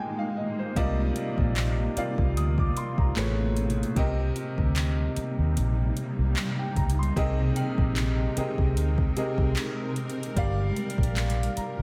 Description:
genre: contemporary R&B.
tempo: 75 BPM.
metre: 4/4.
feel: swing 54% on 16ths.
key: C minor.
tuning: A4 = 440 Hz.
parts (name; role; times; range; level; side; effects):
warm concert grand piano; accompaniment; 0.0-11.8 s; A2 to Eb6; -33 LUFS; equal; none.
granular cloud pad; sustained chords; 0.0-11.8 s; C3 to G5; -35 LUFS; equal; built-in reverb, subtle chorus.
vintage muted fingered electric bass; bass; 0.8-11.8 s; G1 to Eb2; -29 LUFS; equal; none.
smooth R&B drum kit; drums; 0.8-11.8 s; handclaps, hi-hat, kick drum; -32 LUFS; equal; none.
synth chime; texture; 0.8-2.4, 7.6-9.2 s; F5 to G5; -46 LUFS; equal; ensemble chorus, tape echo.
room: light reverb, digital ambience.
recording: none.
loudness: -27 LUFS.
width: mono.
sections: 0.0-11.8 A section.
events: grand piano fill 0.0-0.8, 11.2-11.8.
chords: 0.0 Bb13sus4; 0.8 Cm11; 3.2 Amaj9; 4.0 Cm9; 7.2 Bb13sus4; 10.4 Gm7.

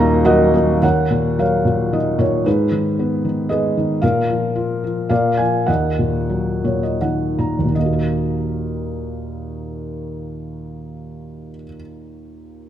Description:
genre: classical, lyrical solo piano.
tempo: 78-116 BPM.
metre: 3/4.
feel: rubato.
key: Eb minor.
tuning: A4 = 440 Hz.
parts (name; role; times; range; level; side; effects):
felt-muted upright piano; solo; 0.0-12.7 s; Eb1 to Bb5; -17 LUFS; equal; none.
room: moderate scoring stage reverb, RT60 1.9 s.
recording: dark, warm production.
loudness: -16 LUFS.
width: side -10 dB against mid.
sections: 0.8-7.8 A section; 7.8-12.2 B section.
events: felt piano fill 0.0-0.8, 6.3-7.8; slowing down 4.0-7.8.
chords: 0.0 Ebm; 0.8 Ebm7; 2.5 Abm; 4.0 Bb5; 5.1 Bb; 5.7 Ebm.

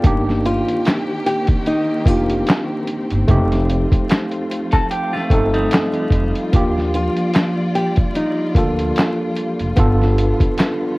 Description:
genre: lo-fi hip hop.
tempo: 74 BPM.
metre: 4/4.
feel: swing 56% on 16ths.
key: C dorian.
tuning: A4 = 440 Hz.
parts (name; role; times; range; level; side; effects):
tine electric piano; accompaniment; 0.0-11.0 s; A3 to D5; -21 LUFS; equal; overdrive, fast stereo tremolo, cassette tape.
warm studio string section; sustained chords; 0.0-11.0 s; D3 to D5; -26 LUFS; equal; none.
upright bass; bass; 0.0-10.3 s; F1 to Eb2; -20 LUFS; equal; none.
lo-fi sampler-style drum kit; drums; 0.0-10.8 s; handclaps, hi-hat, kick drum, snare drum; -17 LUFS; equal; none.
nylon-string guitar; melody; 0.5-9.2 s; Eb4 to G4; -21 LUFS; equal; none.
semi-hollow electric guitar; second line; 4.7-6.5 s; G3 to A4; -24 LUFS; equal; tape echo.
room: light reverb.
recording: worn, warbling old tape, cassette tape, vinyl crackle, warbly pitch drift.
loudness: -15 LUFS.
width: side -23 dB against mid.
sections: 0.0-11.0 A section.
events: none.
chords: 0.0 Cm7/G; 3.3 F7; 6.5 Ebmaj9; 9.8 G7.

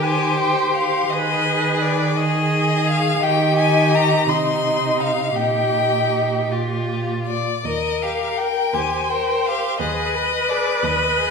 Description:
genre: classical, slow romantic movement for string quartet.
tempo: 52-58 BPM (dotted quarters).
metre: 6/8.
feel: rubato.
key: Eb major.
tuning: A4 = 440 Hz.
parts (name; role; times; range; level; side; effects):
rich violin; melody; 0.0-11.3 s; D5 to C6; -22 LUFS; left 6 dB; none.
rich violin; second line; 0.0-11.3 s; Eb4 to Cb5; -23 LUFS; left 2 dB; none.
rich viola; accompaniment; 0.0-11.3 s; Eb4 to C5; -24 LUFS; right 3 dB; none.
rich cello; bass; 0.0-11.3 s; Eb2 to Eb3; -24 LUFS; right 4 dB; none.
room: wet recital hall reverb, RT60 1.3 s.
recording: recorded in a church or concert hall.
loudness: -17 LUFS.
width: side -5 dB against mid.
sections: 0.0-11.3 A section.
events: none.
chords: 0.0 Eb; 1.1 Abm/Eb; 3.2 Eb; 4.3 Cm; 5.4 Eb/Bb; 7.7 Eb; 9.8 Abm/Eb.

